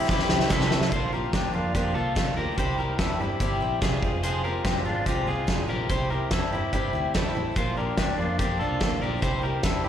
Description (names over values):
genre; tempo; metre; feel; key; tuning
jangly indie pop; 145 BPM; 4/4; straight; C mixolydian; A4 = 440 Hz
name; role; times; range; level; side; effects
picked acoustic archtop guitar; accompaniment; 0.0-9.9 s; Bb2 to F4; -30 LUFS; right 5 dB; slapback echo
electric guitar at the edge of break-up; arpeggios; 0.0-9.9 s; C4 to C5; -28 LUFS; left 4 dB; phaser, analog delay, slapback echo
vintage muted picked electric bass; bass; 0.0-9.9 s; F1 to C3; -30 LUFS; equal; none
loose indie drum kit; drums; 0.1-9.7 s; hi-hat, kick drum, snare drum; -27 LUFS; equal; none
group handclap; percussion; 0.5-0.6 s; none; barely audible; none; none
room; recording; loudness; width
light reverb, small room reverb; live gig heard through the venue's PA, recital hall reverb; -23 LUFS; side -9 dB against mid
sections
0.9-9.9 A section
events
drum fill 0.1-0.9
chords
0.0 C; 0.9 Bb; 2.6 C; 4.0 Fm; 5.9 C; 7.6 Bb; 9.2 C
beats
0.10 0.51 | 0.92 1.34 1.75 2.17 | 2.58 2.99 3.41 3.82 | 4.24 4.65 5.07 5.48 | 5.90 6.31 6.73 7.14 | 7.56 7.98 8.39 8.81 | 9.22 9.64